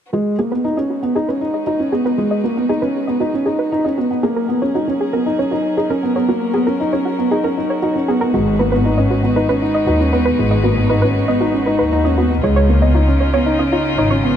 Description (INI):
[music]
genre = piano and strings electronica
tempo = 117 BPM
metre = 4/4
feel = straight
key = G# minor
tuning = A4 = 440 Hz
[part]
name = dark string quartet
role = sustained chords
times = 0.1-14.4 s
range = C#3 to B4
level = -25 LUFS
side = left 2 dB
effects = none
[part]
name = soft round pluck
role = arpeggios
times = 0.1-14.2 s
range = E#4 to D#5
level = -22 LUFS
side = right 1 dB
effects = chorus, ping-pong delay
[part]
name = felt-muted upright piano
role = riff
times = 0.1-14.3 s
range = G#3 to D#4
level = -17 LUFS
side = equal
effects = ping-pong delay
[part]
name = rich chamber double bass section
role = bass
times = 8.3-14.4 s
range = G#1 to D#2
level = -17 LUFS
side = equal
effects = none
[sound]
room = moderate huge ambient reverb, RT60 4.0 s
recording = dark, warm production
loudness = -14 LUFS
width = side -9 dB against mid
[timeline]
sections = 0.1-14.4 A section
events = fade-in on string quartet 0.1-14.4; filter sweep on synth arpeggio sound 0.1-14.4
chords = 0.1 G#m7; 4.2 F#add9; 8.3 G#m7; 12.4 C#add9